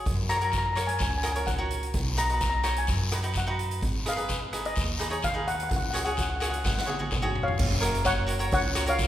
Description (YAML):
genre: calypso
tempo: 128 BPM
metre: 4/4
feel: straight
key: F# major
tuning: A4 = 441 Hz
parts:
  - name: cavaquinho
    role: accompaniment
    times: 0.0-9.1 s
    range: D#4 to D#5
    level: -32 LUFS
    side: right 1 dB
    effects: none
  - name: upright bass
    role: bass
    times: 0.0-9.1 s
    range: F#1 to F#2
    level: -31 LUFS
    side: equal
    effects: none
  - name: street-band drum kit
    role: drums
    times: 0.1-9.1 s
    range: crash cymbal, hi-hat, kick drum, rim click, snare drum, toms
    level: -31 LUFS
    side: equal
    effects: none
  - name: guiro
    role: percussion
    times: 0.1-9.1 s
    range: none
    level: -36 LUFS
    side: left 4 dB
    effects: none
  - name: steel pan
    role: melody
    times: 0.3-9.1 s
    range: C#5 to A#5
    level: -30 LUFS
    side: left 2 dB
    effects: none
room: moderate recital hall reverb, RT60 1.8 s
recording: recorded in a church or concert hall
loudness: -25 LUFS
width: side -12 dB against mid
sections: 0.0-7.6 A section; 7.6-9.1 B section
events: drum fill 6.7-7.6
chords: 0.1 F#; 1.9 B6; 3.8 G#m; 5.7 C#sus4; 7.6 F#maj7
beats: | 0.06 0.53 1.00 1.47 | 1.95 2.42 2.89 3.36 | 3.83 4.30 4.77 5.24 | 5.71 6.18 6.65 7.12 | 7.59 8.06 8.53 8.99